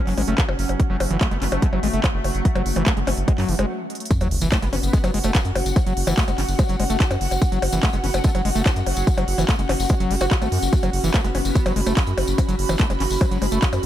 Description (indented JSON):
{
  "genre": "psychedelic trance",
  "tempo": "145 BPM",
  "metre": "4/4",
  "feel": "straight",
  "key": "F# minor",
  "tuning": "A4 = 440 Hz",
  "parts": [
    { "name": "pulsing gated texture", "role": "sustained chords", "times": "0.0-4.1 s", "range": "F#3 to C#4", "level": "-30 LUFS", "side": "left 2 dB", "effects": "chorus, built-in reverb, sidechain pumping" },
    { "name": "airy breathy pad", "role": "texture", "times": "0.0-13.9 s", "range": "C#4 to B5", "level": "-28 LUFS", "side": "equal", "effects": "chorus, sidechain pumping" },
    { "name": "screaming distorted acid line", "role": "riff", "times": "0.1-13.6 s", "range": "E3 to F#4", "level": "-27 LUFS", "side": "equal", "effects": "distortion, chorus, auto-pan, sidechain pumping, digital delay" },
    { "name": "round analog bass", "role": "bass", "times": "0.1-13.9 s", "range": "F#1 to F#2", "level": "-24 LUFS", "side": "equal", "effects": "none" },
    { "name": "techno drum kit", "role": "drums", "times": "0.1-13.9 s", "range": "handclaps, hi-hat, percussion blips", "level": "-27 LUFS", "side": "left 1 dB", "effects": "none" },
    { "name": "electronic kick drum", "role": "drums", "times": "0.4-13.7 s", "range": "none", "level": "-20 LUFS", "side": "equal", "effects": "none" },
    { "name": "metallic wobble bass", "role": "second line", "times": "1.3-5.1, 7.9-11.8 s", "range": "F#3 to B3", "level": "-37 LUFS", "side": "right 2 dB", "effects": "analog chorus, sidechain pumping, high-pass filter, digital delay" },
    { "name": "tambourine", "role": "percussion", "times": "4.1-13.8 s", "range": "none", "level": "-34 LUFS", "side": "left 4 dB", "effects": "none" },
    { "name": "sub drop", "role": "sound effects", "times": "4.1-5.8 s", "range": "none", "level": "-29 LUFS", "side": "equal", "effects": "none" }
  ],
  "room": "digital ambience",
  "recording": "none",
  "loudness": "-18 LUFS",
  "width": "side -12 dB against mid",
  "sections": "0.0-4.1 A section; 4.1-13.9 B section",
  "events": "break 3.7-4.1; drum fill 3.9; drop 4.1-13.9; impact 4.1-5.8",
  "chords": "0.0 F#5"
}